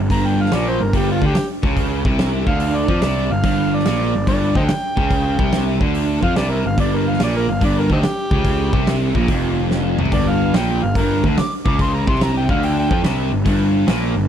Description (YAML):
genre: blues rock power trio and southern rock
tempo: 144 BPM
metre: 4/4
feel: swing 68% on 8ths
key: G minor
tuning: A4 = 440 Hz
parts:
  - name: distorted electric guitar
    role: riff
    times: 0.0-14.3 s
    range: F2 to F3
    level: -20 LUFS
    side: right 1 dB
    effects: overdrive
  - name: fuzz picked electric bass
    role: bass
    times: 0.0-14.3 s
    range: F1 to F2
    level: -20 LUFS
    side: equal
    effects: overdrive
  - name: overdriven harmonica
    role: melody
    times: 0.1-13.0 s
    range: C4 to D6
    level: -24 LUFS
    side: equal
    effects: none
  - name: huge arena drum kit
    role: drums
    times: 0.1-14.0 s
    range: hi-hat, kick drum, snare drum, toms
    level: -21 LUFS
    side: equal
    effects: none
room: small room reverb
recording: dry, close 1970s-style studio recording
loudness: -15 LUFS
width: side -9 dB against mid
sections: 0.0-14.3 A section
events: harmonica solo 0.0-14.3; drum fill 9.7-10.1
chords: 0.0 Gm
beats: | 0.10 0.52 0.93 1.35 | 1.77 2.19 2.60 3.02 | 3.44 3.86 4.28 4.69 | 5.11 5.53 5.95 6.36 | 6.78 7.20 7.62 8.03 | 8.45 8.87 9.29 9.70 | 10.12 10.54 10.96 11.37 | 11.79 12.21 12.62 13.04 | 13.45 13.87